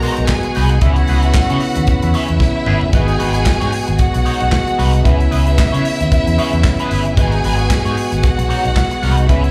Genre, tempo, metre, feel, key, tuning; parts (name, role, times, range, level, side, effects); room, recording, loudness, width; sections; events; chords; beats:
disco; 113 BPM; 4/4; swing 56% on 16ths; G# minor; A4 = 439 Hz
rich studio violin section; second line; 0.0-9.5 s; E4 to A#5; -24 LUFS; equal; slapback echo
electric guitar at the edge of break-up; accompaniment; 0.0-9.5 s; D#4 to C#5; -26 LUFS; equal; wah
overdriven tonewheel organ; sustained chords; 0.0-9.5 s; B2 to F#4; -23 LUFS; equal; chorus vibrato, slow rotary speaker
modern studio drum kit; drums; 0.0-9.5 s; handclaps, hi-hat, kick drum, snare drum, toms; -20 LUFS; equal
vintage muted fingered electric bass; bass; 0.2-9.5 s; G1 to C#3; -18 LUFS; equal
little or no reverb; live gig heard through the venue's PA, club reverb; -15 LUFS; mono
0.0-9.5 A section
drum fill 2.4-2.9
0.0 G#m7; 0.8 C#m7; 2.9 G#m7; 5.1 C#m7; 7.2 G#m7
0.29 | 0.82 1.35 1.88 2.40 | 2.93 3.46 3.99 4.52 | 5.05 5.58 6.11 6.64 | 7.17 7.70 8.23 8.76 | 9.29